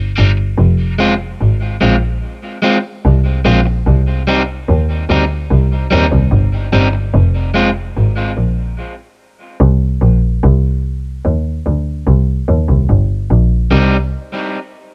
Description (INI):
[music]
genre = dub reggae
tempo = 73 BPM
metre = 4/4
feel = straight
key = C minor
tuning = A4 = 440 Hz
[part]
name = clear double bass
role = bass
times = 0.0-14.1 s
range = F1 to Eb2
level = -15 LUFS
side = equal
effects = none
[part]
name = electric guitar at the edge of break-up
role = accompaniment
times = 0.2-7.7, 13.7-14.0 s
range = G3 to F4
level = -19 LUFS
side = equal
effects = high-pass filter, tape echo
[sound]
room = small room reverb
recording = none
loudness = -14 LUFS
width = mono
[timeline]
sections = 0.0-13.7 A section; 13.7-14.9 B section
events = none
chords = 0.0 Cm; 0.6 Fm; 3.9 Cm; 7.1 Fm; 10.4 Cm